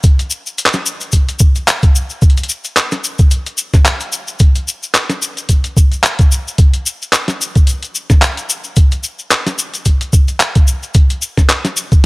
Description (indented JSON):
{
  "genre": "glitch hop",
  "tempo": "110 BPM",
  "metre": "4/4",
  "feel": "swing 56% on 16ths",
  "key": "none",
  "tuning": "none",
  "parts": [
    { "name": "boom bap sampler-style drum kit", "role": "drums", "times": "0.0-12.0 s", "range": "handclaps, hi-hat, snare drum", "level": "-16 LUFS", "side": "equal", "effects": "none" },
    { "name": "electronic kick drum", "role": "drums", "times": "0.0-12.0 s", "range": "none", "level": "-9 LUFS", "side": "equal", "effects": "none" },
    { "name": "tube shaker", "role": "percussion", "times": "0.0-12.0 s", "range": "none", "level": "-20 LUFS", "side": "left 3 dB", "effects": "none" }
  ],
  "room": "little or no reverb",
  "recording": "dry, gritty hardware recording",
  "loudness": "-11 LUFS",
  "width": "side -24 dB against mid",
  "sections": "0.0-12.1 A section",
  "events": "none",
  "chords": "none"
}